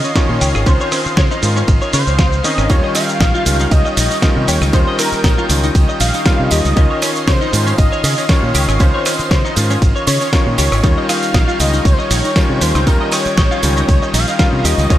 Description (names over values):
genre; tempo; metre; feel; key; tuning
nu-disco, nu disco; 118 BPM; 4/4; swing 54% on 16ths; Eb mixolydian; A4 = 441 Hz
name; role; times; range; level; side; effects
wide unison lead; melody; 0.0-15.0 s; Bb4 to F5; -21 LUFS; equal; tape echo
warm electric grand piano; accompaniment; 0.0-15.0 s; Eb3 to F4; -21 LUFS; left 2 dB; sidechain pumping, digital delay
lush unison pad; sustained chords; 0.0-15.0 s; Eb4 to C6; -24 LUFS; equal; chorus, sidechain pumping
twelve-string electric guitar; riff; 0.0-14.9 s; Db4 to Eb5; -24 LUFS; left 2 dB; ensemble chorus
dusty soul sampler-style drum kit; drums; 0.0-15.0 s; hi-hat, ride cymbal, rim click, shaker, snare drum; -20 LUFS; right 1 dB; none
electronic kick drum; drums; 0.2-15.0 s; none; -14 LUFS; equal; none
fingered electric bass with an envelope filter; bass; 0.3-15.0 s; Ab1 to Db3; -17 LUFS; equal; sidechain pumping
tambourine; percussion; 2.7-15.0 s; none; -27 LUFS; right 11 dB; none
room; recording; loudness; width
little or no reverb; none; -12 LUFS; side -13 dB against mid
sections
0.0-15.0 A section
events
none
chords
0.0 Dbmaj9; 2.7 Eb9; 6.8 Dbmaj9; 10.8 Eb9